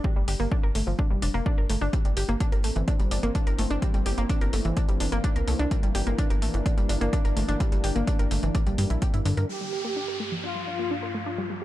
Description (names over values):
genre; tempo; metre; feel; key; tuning
melodic techno; 127 BPM; 4/4; straight; unclear; A4 = 440 Hz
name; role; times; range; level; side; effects
wide unison pluck; arpeggios; 0.0-11.6 s; D3 to Bb4; -31 LUFS; equal; cassette tape, sidechain pumping, tape echo
electronic kick drum; drums; 0.0-9.1 s; none; -25 LUFS; equal; none
tight sequencer bass; bass; 0.2-9.4 s; F1 to G2; -27 LUFS; equal; sidechain pumping
electronic hi-hat; drums; 0.3-9.5 s; none; -36 LUFS; left 1 dB; low-pass filter on hats, low-pass filter on room
lush unison pad; sustained chords; 2.3-11.6 s; G2 to D4; -35 LUFS; equal; chorus, sidechain pumping
analog synth brass; melody; 9.5-11.6 s; F4 to G4; -31 LUFS; left 1 dB; chorus, sidechain pumping, tape echo
downlifter; sound effects; 9.5-11.6 s; none; -34 LUFS; equal; none
room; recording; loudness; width
digital ambience; dark, warm production; -23 LUFS; side -14 dB against mid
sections
0.0-9.5 A section; 9.5-11.6 B section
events
filter sweep on synth arpeggio sound 9.5-11.6; filter sweep on analog polysynth 9.5-11.6; filter sweep on analog synth pad 9.5-11.6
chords
0.0 G7(no3); 1.9 C7/G; 9.5 Gm7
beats
| 0.04 0.52 0.99 1.46 | 1.93 2.40 2.88 3.35 | 3.82 4.29 4.77 5.24 | 5.71 6.18 6.66 7.13 | 7.60 8.07 8.55 9.02 | 9.49 9.96 10.44 10.91 | 11.38